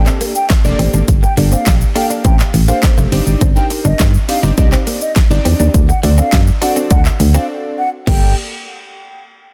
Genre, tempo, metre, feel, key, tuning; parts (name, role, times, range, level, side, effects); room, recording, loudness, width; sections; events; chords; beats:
dance-pop; 103 BPM; 4/4; straight; G minor; A4 = 441 Hz
mellow hollow concert flute; melody; 0.0-8.3 s; Eb5 to G5; -24 LUFS; equal; digital delay
glassy digital keys; accompaniment; 0.0-8.3 s; Bb3 to F5; -23 LUFS; equal; chorus
solid FM bass; bass; 0.0-8.3 s; F1 to G2; -15 LUFS; equal; sidechain pumping
direct-recorded clean electric guitar; riff; 0.1-8.2 s; A3 to Eb4; -26 LUFS; equal; ensemble chorus
pop drum kit; drums; 0.1-8.2 s; crash cymbal, handclaps, hi-hat, kick drum, shaker, snare drum; -16 LUFS; equal
digital ambience; dense, heavily limited modern master; -13 LUFS; mono
0.0-8.1 A section; 8.1-9.5 B section
drop 0.0-8.1; break 7.5-8.1
0.0 Gmadd9; 3.1 Cmadd9/G; 5.7 D7; 8.1 Gmadd9
0.50 | 1.08 1.67 2.25 2.83 | 3.41 4.00 4.58 5.16 | 5.74 6.33 6.91 7.49 | 8.07